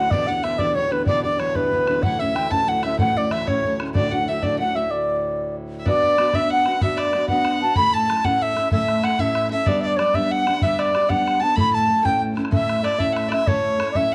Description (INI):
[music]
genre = celtic folk, Celtic slide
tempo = 126 BPM (dotted quarters)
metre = 12/8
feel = straight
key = unclear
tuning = A4 = 440 Hz
[part]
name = reedy baroque flute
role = melody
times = 0.0-14.1 s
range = B4 to B5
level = -23 LUFS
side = equal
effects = none
[part]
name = dark fiddle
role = second line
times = 0.0-14.1 s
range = B4 to B5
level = -31 LUFS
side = equal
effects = none
[part]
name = fingerpicked steel-string acoustic guitar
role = accompaniment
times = 0.0-14.1 s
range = D2 to B4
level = -28 LUFS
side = equal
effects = none
[part]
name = hand-pumped harmonium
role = drone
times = 0.0-5.9 s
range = D2 to A2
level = -35 LUFS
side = equal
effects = none
[part]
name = bodhran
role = percussion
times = 0.1-14.0 s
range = none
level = -29 LUFS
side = equal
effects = none
[sound]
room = light reverb, small room ambience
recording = none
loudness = -21 LUFS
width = mono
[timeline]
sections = 0.0-5.9 A section; 5.9-14.1 B section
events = stop 4.9-5.9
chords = 0.1 Em7; 2.0 A; 4.0 D; 5.9 Bm; 7.8 A; 9.7 G; 11.6 A